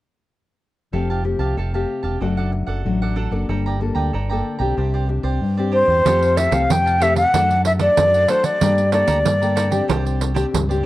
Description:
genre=samba and choro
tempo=94 BPM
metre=4/4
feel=straight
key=F major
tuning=A4 = 440 Hz
part: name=cavaquinho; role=accompaniment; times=0.9-10.9 s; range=D4 to Bb5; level=-29 LUFS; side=right 6 dB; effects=cassette tape
part: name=nylon-string guitar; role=accompaniment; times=0.9-10.9 s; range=G2 to A4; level=-24 LUFS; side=left 4 dB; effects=cassette tape
part: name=deep dub fingered electric bass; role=bass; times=0.9-10.8 s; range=E1 to G2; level=-21 LUFS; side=equal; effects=none
part: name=breathy concert flute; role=melody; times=5.7-9.9 s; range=C5 to G5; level=-16 LUFS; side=equal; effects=cassette tape
part: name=pandeiro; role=percussion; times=6.1-10.9 s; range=none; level=-24 LUFS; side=right 6 dB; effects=none
room=light reverb, small room reverb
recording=home recording on cassette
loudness=-16 LUFS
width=side -16 dB against mid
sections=0.9-6.1 A section; 6.1-10.9 B section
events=none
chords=0.9 Fadd9; 2.2 D/F#; 3.5 Gmadd9; 4.8 Csus2; 6.1 Fadd9; 7.3 D/F#; 8.6 Gmadd9; 9.9 Csus2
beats=| 0.93 1.57 2.21 2.85 | 3.49 4.13 4.77 5.42 | 6.05 6.70 7.33 7.97 | 8.62 9.26 9.89 10.54

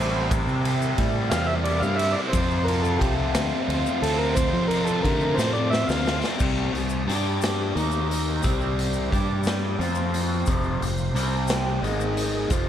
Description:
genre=psychedelic rock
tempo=59 BPM (dotted quarters)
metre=6/8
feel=straight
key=C mixolydian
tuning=A4 = 439 Hz
part: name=overdriven combo organ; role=melody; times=0.0-6.2 s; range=G4 to F5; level=-27 LUFS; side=right 1 dB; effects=tape echo
part: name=percussive tonewheel organ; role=sustained chords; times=0.0-12.7 s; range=F3 to C6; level=-36 LUFS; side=right 4 dB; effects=slow rotary speaker, overdrive, chorus vibrato
part: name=fuzz guitar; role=riff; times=0.0-12.7 s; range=F2 to G4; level=-26 LUFS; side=left 1 dB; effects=distortion, phaser
part: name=fingered electric bass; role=bass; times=0.0-12.7 s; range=F1 to F3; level=-27 LUFS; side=equal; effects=none
part: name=raw garage drum kit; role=drums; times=0.3-12.7 s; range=crash cymbal, hi-hat, kick drum, ride cymbal, snare drum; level=-27 LUFS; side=equal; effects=none
part: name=tube shaker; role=percussion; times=0.3-12.7 s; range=none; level=-40 LUFS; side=left 14 dB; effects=none
room=light reverb, small room ambience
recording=none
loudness=-21 LUFS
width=side -10 dB against mid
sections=0.0-6.4 A section; 6.4-12.7 B section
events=transistor combo organ solo 0.0-6.4; drum fill 5.4-6.4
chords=0.0 C; 2.3 F; 6.4 C; 7.1 G5; 7.8 Eb5; 8.4 C; 9.1 G5; 9.8 F5; 11.1 C5; 11.8 Ab5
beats=| 0.31 1.32 | 2.34 3.35 | 4.37 5.39 | 6.40 7.42 | 8.44 9.45 | 10.47 11.49 | 12.50

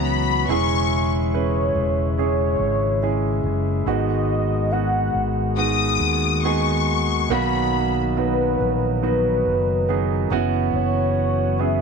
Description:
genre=pop ballad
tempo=70 BPM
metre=4/4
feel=straight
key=B major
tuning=A4 = 439 Hz
part: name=rich studio violin section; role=second line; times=0.0-8.0 s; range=B5 to D#6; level=-24 LUFS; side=left 11 dB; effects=none
part: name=warm concert grand piano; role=accompaniment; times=0.0-11.8 s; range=G#2 to B4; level=-24 LUFS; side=right 10 dB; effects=none
part: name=pipe organ, flutes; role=sustained chords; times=0.0-11.8 s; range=C#3 to F#4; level=-26 LUFS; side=left 4 dB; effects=none
part: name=fretless electric bass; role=bass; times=0.0-11.8 s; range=E1 to D#2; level=-24 LUFS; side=left 1 dB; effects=none
part: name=warm velvety synth lead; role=melody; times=1.4-11.8 s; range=B4 to F#5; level=-24 LUFS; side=left 1 dB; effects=chorus, slapback echo
room=moderate echo chamber reverb, RT60 2.0 s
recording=1960s-style stereo with parts hard left and right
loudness=-18 LUFS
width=side -5 dB against mid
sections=0.0-11.8 A section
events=none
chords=0.5 C#m/E; 3.9 G#m7; 7.3 Bmaj7; 10.3 F#7sus4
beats=| 0.49 1.33 2.18 3.03 | 3.87 4.72 5.58 6.44 | 7.31 8.17 9.03 9.89 | 10.74 11.60

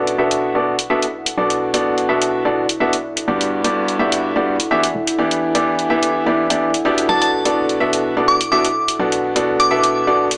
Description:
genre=piano house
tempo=126 BPM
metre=4/4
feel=straight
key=B minor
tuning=A4 = 440 Hz
part: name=clear grand piano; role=riff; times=0.0-10.3 s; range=G2 to E5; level=-19 LUFS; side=equal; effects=low-pass filter, tape echo
part: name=organ-like FM bass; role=bass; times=0.0-10.4 s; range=E1 to B1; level=-39 LUFS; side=equal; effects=tube saturation
part: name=warbly tape-like pad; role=texture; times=0.0-10.4 s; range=E4 to F#5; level=-27 LUFS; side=equal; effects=chorus, built-in reverb
part: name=electronic hi-hat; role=drums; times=0.1-10.4 s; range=none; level=-24 LUFS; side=equal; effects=none
part: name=glassy synth bell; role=melody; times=7.1-10.1 s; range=A5 to D6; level=-20 LUFS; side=equal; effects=chorus, phaser
room=moderate plate reverb, RT60 1.7 s, digital ambience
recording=small speaker sound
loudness=-17 LUFS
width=mono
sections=0.0-10.4 A section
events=none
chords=0.0 Bm7; 3.3 Gmaj7; 4.9 Em7; 7.1 Bm7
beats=0.42 0.90 | 1.38 1.85 2.33 2.80 | 3.28 3.76 4.23 4.71 | 5.18 5.66 6.14 6.61 | 7.09 7.57 8.04 8.52 | 8.99 9.47 9.95

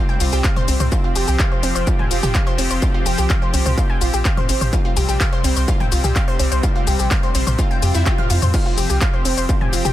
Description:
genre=melodic techno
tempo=126 BPM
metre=4/4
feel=straight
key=unclear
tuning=A4 = 440 Hz
part: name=lush unison pad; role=sustained chords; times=0.0-9.9 s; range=C3 to G4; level=-26 LUFS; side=left 1 dB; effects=chorus, sidechain pumping
part: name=analog pluck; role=arpeggios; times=0.0-9.9 s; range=C4 to Ab5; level=-24 LUFS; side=equal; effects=chorus, sidechain pumping, digital delay
part: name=round analog bass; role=bass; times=0.2-9.9 s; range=F1 to F2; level=-19 LUFS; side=equal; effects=sidechain pumping
part: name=punchy analog drum machine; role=drums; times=0.2-9.9 s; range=crash cymbal, handclaps, hi-hat, shaker, toms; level=-24 LUFS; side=left 3 dB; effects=sidechain pumping on cymbals, sidechain pumping on perc, sidechain pumping on hats, sidechain pumping on toms
part: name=electronic kick drum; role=drums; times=0.4-9.6 s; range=none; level=-19 LUFS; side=equal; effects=distortion
part: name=swell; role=sound effects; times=7.7-8.5 s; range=none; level=-30 LUFS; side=left 2 dB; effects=none
room=digital ambience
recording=dense, heavily limited modern master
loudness=-15 LUFS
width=side -13 dB against mid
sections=0.0-9.9 A section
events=swell 7.7-8.5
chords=0.0 Csus4; 0.9 Fmadd9; 4.7 Csus4; 8.5 Fsus2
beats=0.44 | 0.92 1.40 1.87 2.35 | 2.82 3.30 3.78 4.25 | 4.73 5.21 5.68 6.16 | 6.63 7.11 7.59 8.06 | 8.54 9.01 9.49

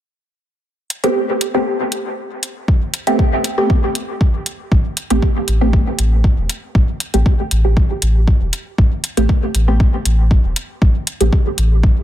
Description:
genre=dub techno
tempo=118 BPM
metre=4/4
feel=straight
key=A minor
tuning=A4 = 440 Hz
part: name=electronic hi-hat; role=drums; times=0.9-11.7 s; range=none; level=-21 LUFS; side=left 1 dB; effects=overdrive
part: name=filtered dub chord stab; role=stabs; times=1.0-11.4 s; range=A3 to G4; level=-19 LUFS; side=right 1 dB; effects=phaser, sidechain pumping, dub echo
part: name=electronic kick drum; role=drums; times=2.7-11.9 s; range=none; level=-14 LUFS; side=equal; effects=overdrive
part: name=soft dub sub bass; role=bass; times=4.7-11.9 s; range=E1 to A1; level=-15 LUFS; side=equal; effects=sidechain pumping
room=digital ambience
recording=none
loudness=-14 LUFS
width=side -12 dB against mid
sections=0.6-4.7 A section; 4.7-12.0 B section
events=filter sweep on synth stab 4.7-12.0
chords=0.6 Am9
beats=| 0.65 1.16 1.67 2.17 | 2.68 3.19 3.70 4.21 | 4.72 5.22 5.73 6.24 | 6.75 7.26 7.77 8.28 | 8.78 9.29 9.80 10.31 | 10.82 11.33 11.83

